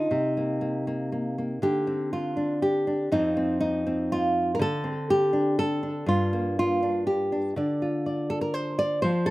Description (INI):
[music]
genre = folk, solo fingerstyle acoustic guitar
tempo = 121 BPM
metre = 3/4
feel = rubato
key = unclear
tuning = A4 = 441 Hz
[part]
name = nylon-string guitar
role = solo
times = 0.0-9.3 s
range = F2 to D5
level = -24 LUFS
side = equal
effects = slapback echo
[sound]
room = little or no reverb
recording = recorded outdoors, with no room sound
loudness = -24 LUFS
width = side -18 dB against mid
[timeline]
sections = 0.0-1.6 A section; 1.6-9.3 B section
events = none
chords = 0.1 Cm7; 1.6 Dm7; 3.1 F5; 4.6 D5; 6.1 Gm; 7.6 Dm7